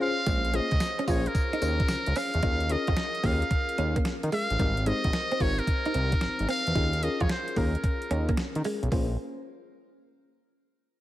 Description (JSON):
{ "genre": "R&B, new jack swing", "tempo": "111 BPM", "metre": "4/4", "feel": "swing 67% on 16ths", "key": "Bb dorian", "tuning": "A4 = 439 Hz", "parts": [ { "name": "trumpet with metal mute", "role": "melody", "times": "0.0-8.4 s", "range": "Bb4 to F5", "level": "-30 LUFS", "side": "equal", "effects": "none" }, { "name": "FM electric piano with tremolo", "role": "accompaniment", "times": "0.0-9.2 s", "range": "C4 to C5", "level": "-34 LUFS", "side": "left 3 dB", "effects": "slapback echo" }, { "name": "direct-recorded clean electric guitar", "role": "riff", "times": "0.3-9.1 s", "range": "G3 to F4", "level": "-34 LUFS", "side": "right 3 dB", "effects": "lush chorus" }, { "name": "fat analog bass", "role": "bass", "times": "0.3-9.2 s", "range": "Ab1 to Eb3", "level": "-28 LUFS", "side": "equal", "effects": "none" }, { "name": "clean 12-bit digital drum machine", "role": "drums", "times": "0.3-9.1 s", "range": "hi-hat, kick drum, snare drum, tambourine", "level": "-29 LUFS", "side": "equal", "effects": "none" } ], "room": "light reverb", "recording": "none", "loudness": "-25 LUFS", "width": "side -14 dB against mid", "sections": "0.3-8.9 A section; 8.9-11.0 B section", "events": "break 0.0", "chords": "0.3 Bbm7; 2.4 Eb9sus4; 4.6 Abmaj7; 6.8 Eb9sus4; 8.9 Bbm7", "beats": "| 0.27 0.81 1.35 1.89 | 2.43 2.97 3.51 4.05 | 4.59 5.13 5.67 6.21 | 6.75 7.29 7.83 8.38 | 8.92" }